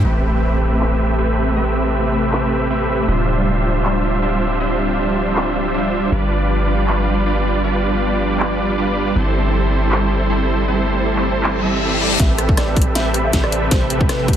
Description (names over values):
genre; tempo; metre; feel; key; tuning
future bass; 158 BPM; 4/4; swing 54% on 16ths, half-time; A minor; A4 = 441 Hz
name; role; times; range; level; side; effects
ethereal airy pad; sustained chords; 1.3-14.4 s; C3 to E5; -27 LUFS; left 1 dB; ensemble chorus, built-in reverb, sidechain pumping
dense compressed supersaw; riff; 0.0-14.4 s; G3 to E5; -18 LUFS; right 1 dB; sidechain pumping, low-pass filter, digital delay
long sustained 808-style bass; bass; 0.0-14.4 s; D1 to A1; -20 LUFS; equal; sidechain pumping
dubstep drum kit; drums; 0.0-14.4 s; crash cymbal, handclaps, hi-hat, rim click, snare drum; -23 LUFS; equal; high-pass filter on snare, low-pass filter on snare, high-pass filter on hats, low-pass filter on hats, high-pass filter on cymbals, low-pass filter on cymbals, high-pass filter on room, low-pass filter on room
impact, reverse cymbal and riser; sound effects; 0.0-1.6, 11.6-14.4 s; none; -26 LUFS; left 3 dB; none
dark grand piano; melody; 12.2-14.3 s; B4 to E5; -27 LUFS; right 1 dB; sidechain pumping, low-pass filter, dub echo
electronic kick drum; drums; 12.2-14.4 s; none; -16 LUFS; equal; none
room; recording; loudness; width
light reverb; none; -15 LUFS; side -9 dB against mid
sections
0.0-12.2 A section; 12.2-14.4 B section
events
impact 0.0-1.6; filter sweep on ambient pad 0.0-12.2; reverse cymbal 11.6-12.2; build-up 12.2-14.4; drum fill 12.2-14.4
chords
0.0 Am9; 3.1 Dm11; 6.1 G7; 9.2 C6/G; 12.2 Am9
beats
| 0.04 0.42 0.80 1.18 | 1.56 1.94 2.32 2.70 | 3.08 3.46 3.84 4.22 | 4.60 4.98 5.36 5.74 | 6.12 6.50 6.88 7.26 | 7.64 8.02 8.40 8.78 | 9.16 9.54 9.92 10.30 | 10.68 11.06 11.44 11.82 | 12.20 12.58 12.96 13.34 | 13.71 14.10